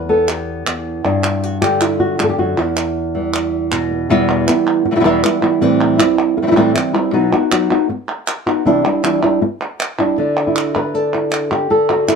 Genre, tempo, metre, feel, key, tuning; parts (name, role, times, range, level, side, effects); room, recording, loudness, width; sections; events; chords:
flamenco; 158 BPM; 4/4; straight; E minor; A4 = 440 Hz
flamenco guitar; melody; 0.0-12.2 s; E2 to B4; -14 LUFS; equal
palmas hand claps; percussion; 0.3-12.2 s; -21 LUFS; right 2 dB
light reverb; dark, warm production; -14 LUFS; side -5 dB against mid
0.0-4.1 A section; 4.1-10.2 B section; 10.2-12.2 C section
0.0 Em; 1.0 G5; 2.6 Em; 5.6 Am7; 7.1 B; 8.7 Cadd9 (rootless); 10.2 Dadd9